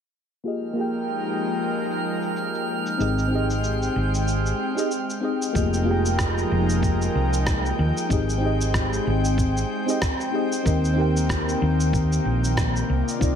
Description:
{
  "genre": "sunset chillout",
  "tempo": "94 BPM",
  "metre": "4/4",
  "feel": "swing 57% on 16ths",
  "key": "unclear",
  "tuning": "A4 = 440 Hz",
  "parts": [
    { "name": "mellow FM electric piano", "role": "accompaniment", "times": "0.4-13.4 s", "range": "Bb3 to G5", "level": "-27 LUFS", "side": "moving between left 6 dB and right 2 dB", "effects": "chorus, auto-pan, vintage 12-bit sampler grit, low-pass filter, digital delay" },
    { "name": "airy breathy pad", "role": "sustained chords", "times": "0.4-13.4 s", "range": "C3 to G5", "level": "-27 LUFS", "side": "equal", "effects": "chorus, vintage 12-bit sampler grit" },
    { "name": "electronic cabasa and rim click", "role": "drums", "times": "0.5-13.4 s", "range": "none", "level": "-31 LUFS", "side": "right 1 dB", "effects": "low-pass filter on perc, low-pass filter on snare, low-pass filter on room" },
    { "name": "drifting glass-harmonics texture", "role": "texture", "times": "0.9-5.6 s", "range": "F6", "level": "-33 LUFS", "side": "right 5 dB", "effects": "chorus, built-in reverb" },
    { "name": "hollow-body short-scale fingered electric bass", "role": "bass", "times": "3.0-13.4 s", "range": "F1 to Eb2", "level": "-23 LUFS", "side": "equal", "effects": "none" },
    { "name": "electronic kick drum", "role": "drums", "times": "5.6-13.4 s", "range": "none", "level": "-26 LUFS", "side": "equal", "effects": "none" }
  ],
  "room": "light reverb",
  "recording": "none",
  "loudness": "-21 LUFS",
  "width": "side -8 dB against mid",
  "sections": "0.4-5.6 A section; 5.6-13.4 B section",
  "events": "filter sweep on drum 0.4-5.6; filter sweep on FM electric piano 0.4-5.6",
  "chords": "0.4 Fm11; 3.0 Abmaj7; 5.6 Fm11; 8.1 Abmaj7; 10.7 Eb6"
}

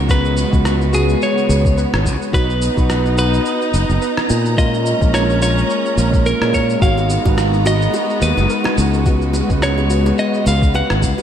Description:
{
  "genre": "sunset chillout",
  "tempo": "107 BPM",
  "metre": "4/4",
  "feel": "swing 56% on 16ths",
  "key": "unclear",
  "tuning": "A4 = 440 Hz",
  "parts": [
    { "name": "bell-like tine electric piano", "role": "accompaniment", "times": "0.0-11.2 s", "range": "G#3 to F#5", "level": "-22 LUFS", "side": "moving between left 4 dB and right 5 dB", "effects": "auto-pan, tape echo" },
    { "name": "rich studio string section", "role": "sustained chords", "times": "0.0-11.2 s", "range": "C#3 to A#5", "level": "-23 LUFS", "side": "equal", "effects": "none" },
    { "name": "modern bright fingered electric bass", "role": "bass", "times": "0.0-11.1 s", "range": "F#1 to A#2", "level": "-17 LUFS", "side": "equal", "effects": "none" },
    { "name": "downlifter", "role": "sound effects", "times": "0.0-2.3 s", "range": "none", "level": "barely audible", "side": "none", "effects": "none" },
    { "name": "clean electric guitar", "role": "melody", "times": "0.1-11.2 s", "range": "G#4 to F#5", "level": "-21 LUFS", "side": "equal", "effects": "diffuse ambient delay" },
    { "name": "soft round pluck", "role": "arpeggios", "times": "0.1-11.0 s", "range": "E#4 to B4", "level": "-29 LUFS", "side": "equal", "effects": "none" },
    { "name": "electronic cabasa and rim click", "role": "drums", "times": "0.1-11.2 s", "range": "none", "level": "-26 LUFS", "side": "equal", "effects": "none" },
    { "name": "electronic kick drum", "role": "drums", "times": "0.1-11.2 s", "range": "none", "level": "-16 LUFS", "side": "equal", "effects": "overdrive" },
    { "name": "bongos", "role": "percussion", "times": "7.0-11.2 s", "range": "none", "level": "-30 LUFS", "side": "right 1 dB", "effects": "none" }
  ],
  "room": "moderate lush hall reverb, RT60 2.5 s",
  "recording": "dreamy mix soaked in reverb",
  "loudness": "-13 LUFS",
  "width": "side -9 dB against mid",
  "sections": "0.0-11.2 A section",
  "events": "none",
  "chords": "0.1 C#7sus4; 2.3 Bmaj7; 4.6 A#m7; 6.8 G#m9; 9.1 C#7sus4"
}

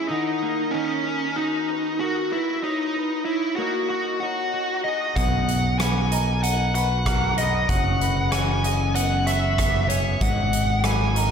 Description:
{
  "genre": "post-rock",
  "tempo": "95 BPM",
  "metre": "4/4",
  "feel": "straight",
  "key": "unclear",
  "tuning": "A4 = 439 Hz",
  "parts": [
    { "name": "bluesy overdriven lead guitar", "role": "melody", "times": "0.0-11.3 s", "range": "C#4 to G#5", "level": "-24 LUFS", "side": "equal", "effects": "distortion, ping-pong delay" },
    { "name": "electric guitar through a small old amp", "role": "arpeggios", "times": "0.0-11.3 s", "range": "G#4 to F#5", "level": "-33 LUFS", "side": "right 4 dB", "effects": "wide subtle chorus, ping-pong delay" },
    { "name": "twelve-string electric guitar", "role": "arpeggios", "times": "0.0-11.3 s", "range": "F#2 to F#4", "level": "-30 LUFS", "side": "left 2 dB", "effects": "spring reverb, ping-pong delay" },
    { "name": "growling fingered electric bass", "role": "bass", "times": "5.2-11.3 s", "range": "F#1 to B1", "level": "-24 LUFS", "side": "equal", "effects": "overdrive" },
    { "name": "huge arena drum kit", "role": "drums", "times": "5.2-11.3 s", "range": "hi-hat, kick drum, rim click", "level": "-26 LUFS", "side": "right 1 dB", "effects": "none" }
  ],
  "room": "wet lush hall reverb, RT60 3.0 s",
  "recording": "dreamy mix soaked in reverb",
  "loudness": "-20 LUFS",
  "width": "side -7 dB against mid",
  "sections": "0.0-5.2 A section; 5.2-11.3 B section",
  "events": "none",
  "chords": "0.1 D#m; 5.2 Bmaj7; 7.7 F#7sus4; 10.2 G#m7"
}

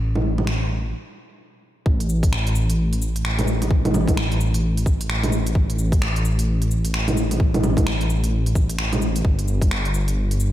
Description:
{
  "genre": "future garage",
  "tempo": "130 BPM",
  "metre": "4/4",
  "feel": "swing 60% on 16ths",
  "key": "unclear",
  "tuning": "A4 = 440 Hz",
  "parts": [
    { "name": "dark detuned saw bass", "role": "bass", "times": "0.0-10.5 s", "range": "G1 to A1", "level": "-21 LUFS", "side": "equal", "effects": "sidechain pumping" },
    { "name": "garage drum kit", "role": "drums", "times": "0.2-10.5 s", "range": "bongos, cabasa, finger snaps, hi-hat", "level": "-25 LUFS", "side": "right 1 dB", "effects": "none" },
    { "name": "electronic kick drum", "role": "drums", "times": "1.9-9.7 s", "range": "none", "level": "-19 LUFS", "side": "equal", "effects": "none" }
  ],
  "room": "light reverb",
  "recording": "none",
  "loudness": "-18 LUFS",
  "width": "side -13 dB against mid",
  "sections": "0.0-1.9 A section; 1.9-10.5 B section",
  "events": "stop 0.9-1.9",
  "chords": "none"
}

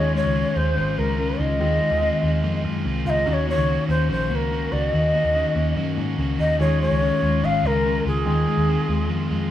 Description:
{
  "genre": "indie pop",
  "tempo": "144 BPM",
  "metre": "4/4",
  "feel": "straight",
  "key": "Eb dorian",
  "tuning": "A4 = 440 Hz",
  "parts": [
    { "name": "breathy mellow shakuhachi", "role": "melody", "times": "0.0-9.5 s", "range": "Ab4 to F5", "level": "-23 LUFS", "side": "equal", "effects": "none" },
    { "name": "cranked stack guitar", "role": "accompaniment", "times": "0.0-9.5 s", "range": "Eb3 to Gb4", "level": "-32 LUFS", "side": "right 5 dB", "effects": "overdrive" },
    { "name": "warm analog keys", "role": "accompaniment", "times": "0.0-9.5 s", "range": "Ab3 to Ab4", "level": "-33 LUFS", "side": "equal", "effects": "chorus" },
    { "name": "mellow electric guitar", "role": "arpeggios", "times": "0.0-9.5 s", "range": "Eb3 to Gb4", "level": "-24 LUFS", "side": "left 3 dB", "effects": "none" },
    { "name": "vintage muted picked electric bass", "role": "bass", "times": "0.0-9.5 s", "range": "Ab1 to Ab2", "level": "-24 LUFS", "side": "equal", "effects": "none" }
  ],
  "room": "little or no reverb",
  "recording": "rough home demo mix, studio reverb",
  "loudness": "-19 LUFS",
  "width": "side -12 dB against mid",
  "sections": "0.0-9.5 A section",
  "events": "none",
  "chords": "0.0 Db; 1.6 Fm/Eb; 3.3 Ebm7; 6.6 Db; 8.3 Fm/Eb"
}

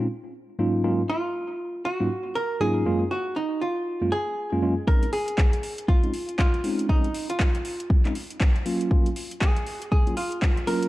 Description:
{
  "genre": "deep house",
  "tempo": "119 BPM",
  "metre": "4/4",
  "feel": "swing 60% on 16ths",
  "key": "unclear",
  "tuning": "A4 = 440 Hz",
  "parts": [
    { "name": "tine electric piano", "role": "stabs", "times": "0.0-10.9 s", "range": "Gb2 to F4", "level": "-26 LUFS", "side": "equal", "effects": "medium stereo tremolo, sidechain pumping, low-pass filter" },
    { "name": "archtop guitar, miked and amplified", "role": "melody", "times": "1.1-10.9 s", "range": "Eb4 to Bb4", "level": "-28 LUFS", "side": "right 1 dB", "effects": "analog delay" },
    { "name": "electronic kick drum", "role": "drums", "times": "4.9-10.5 s", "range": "none", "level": "-21 LUFS", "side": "equal", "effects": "overdrive" },
    { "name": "deep house drum kit", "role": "drums", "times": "5.0-10.9 s", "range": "handclaps, hi-hat", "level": "-33 LUFS", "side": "equal", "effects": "overdrive" }
  ],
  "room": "digital ambience",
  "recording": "dark, warm production",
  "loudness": "-22 LUFS",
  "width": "side -17 dB against mid",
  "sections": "0.0-4.9 A section; 4.9-10.9 B section",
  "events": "build-up 4.9-10.9; filter sweep on tine electric piano 4.9-10.9",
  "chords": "0.0 N.C.; 0.6 Ab13sus4; 2.9 Gbmaj9; 4.9 Ab6; 8.7 Ab13sus4"
}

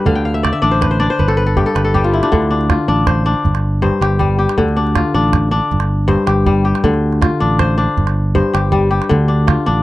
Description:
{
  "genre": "west african traditional, West African string and xylophone music",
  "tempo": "106 BPM (dotted quarters)",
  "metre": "12/8",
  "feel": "straight",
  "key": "D dorian",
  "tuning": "A4 = 440 Hz",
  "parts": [
    { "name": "kora", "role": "arpeggios", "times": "0.0-9.8 s", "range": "G2 to G5", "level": "-15 LUFS", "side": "left 2 dB", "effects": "none" },
    { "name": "fingered electric bass", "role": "bass", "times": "0.1-9.8 s", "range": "G1 to D2", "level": "-16 LUFS", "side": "right 1 dB", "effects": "none" },
    { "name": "calabash", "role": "percussion", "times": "0.1-9.7 s", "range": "none", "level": "-19 LUFS", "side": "right 4 dB", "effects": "none" }
  ],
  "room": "little or no reverb",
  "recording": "dry, close 1970s-style studio recording",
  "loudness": "-12 LUFS",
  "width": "side -16 dB against mid",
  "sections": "0.0-2.3 A section; 2.3-9.8 B section",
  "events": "kora fill 0.1-2.3",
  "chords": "0.1 D5; 1.2 G13; 2.3 Dm; 3.4 Gsus4; 4.6 Dm; 5.7 Gsus4; 6.8 Dm; 8.0 Gsus4; 9.1 Dm"
}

